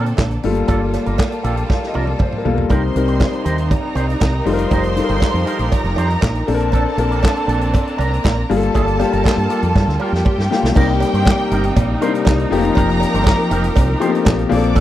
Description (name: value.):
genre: disco.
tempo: 119 BPM.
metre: 4/4.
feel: straight.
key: C dorian.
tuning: A4 = 440 Hz.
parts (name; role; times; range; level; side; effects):
electric guitar with an envelope filter; accompaniment; 0.0-14.8 s; Bb3 to C5; -27 LUFS; right 3 dB; none.
warm grand piano; accompaniment; 0.0-14.8 s; D3 to A5; -20 LUFS; left 6 dB; none.
clear symphonic string section; sustained chords; 0.0-14.8 s; C3 to Bb4; -25 LUFS; right 1 dB; none.
fingered electric bass; bass; 0.0-14.8 s; F1 to Bb2; -19 LUFS; equal; none.
warm soul drum kit; drums; 0.1-14.8 s; crash cymbal, handclaps, hi-hat, kick drum, snare drum, toms; -17 LUFS; right 1 dB; none.
cowbell; percussion; 0.2-14.8 s; none; -29 LUFS; right 14 dB; none.
warm studio violin section; second line; 2.7-14.8 s; G4 to D6; -24 LUFS; equal; none.
room: little or no reverb.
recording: none.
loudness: -14 LUFS.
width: side -13 dB against mid.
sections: 0.0-2.7 A section; 2.7-10.8 B section; 10.8-14.8 C section.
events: grand piano fill 1.2-2.7; drum fill 1.7-2.7, 9.8-10.8.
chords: 0.4 Gm9; 2.7 Cm7; 4.5 F9sus4; 6.5 Bbmaj9; 8.5 Gm9; 10.8 Cm7; 12.5 F9sus4.